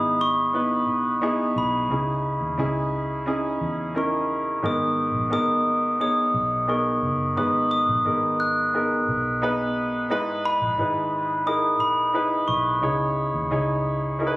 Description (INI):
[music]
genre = pop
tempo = 88 BPM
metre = 4/4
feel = straight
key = G# minor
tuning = A4 = 436 Hz
[part]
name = glockenspiel with soft plastic mallets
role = melody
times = 0.0-14.4 s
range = B5 to F#6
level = -23 LUFS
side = equal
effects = plate reverb
[part]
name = clear concert grand piano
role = accompaniment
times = 0.0-14.4 s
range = G#2 to C#5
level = -25 LUFS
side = equal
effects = plate reverb
[part]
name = vintage muted fingered electric bass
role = bass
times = 0.0-14.4 s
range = F#1 to E2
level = -32 LUFS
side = equal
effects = none
[sound]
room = moderate studio reverb, RT60 0.5 s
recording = recorded on a phone in the room, studio reverb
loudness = -21 LUFS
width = side -20 dB against mid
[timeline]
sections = 0.0-14.4 A section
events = none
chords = 0.0 Emaj7/G#; 1.9 C#madd9; 4.6 G#madd9; 10.1 Emaj7/G#; 12.8 C#madd9